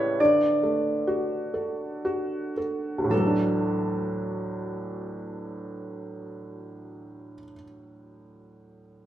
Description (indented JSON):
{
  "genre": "children's music, lullaby",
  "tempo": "52-74 BPM",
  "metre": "3/4",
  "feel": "straight",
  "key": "D major",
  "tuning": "A4 = 445 Hz",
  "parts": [
    { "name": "Celtic harp", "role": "melody", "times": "0.0-7.5 s", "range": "A4 to E5", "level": "-27 LUFS", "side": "left 1 dB", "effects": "none" },
    { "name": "felt-muted upright piano", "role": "accompaniment", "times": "0.0-9.1 s", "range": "D2 to A4", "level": "-28 LUFS", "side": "right 1 dB", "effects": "none" }
  ],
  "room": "moderate recital hall reverb, RT60 1.4 s",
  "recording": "minimal, uncompressed stereo recording",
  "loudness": "-24 LUFS",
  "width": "side -12 dB against mid",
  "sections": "0.0-3.1 A section; 3.1-6.5 B section",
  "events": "slowing down 0.0-3.1",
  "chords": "0.2 D; 3.1 Dadd9"
}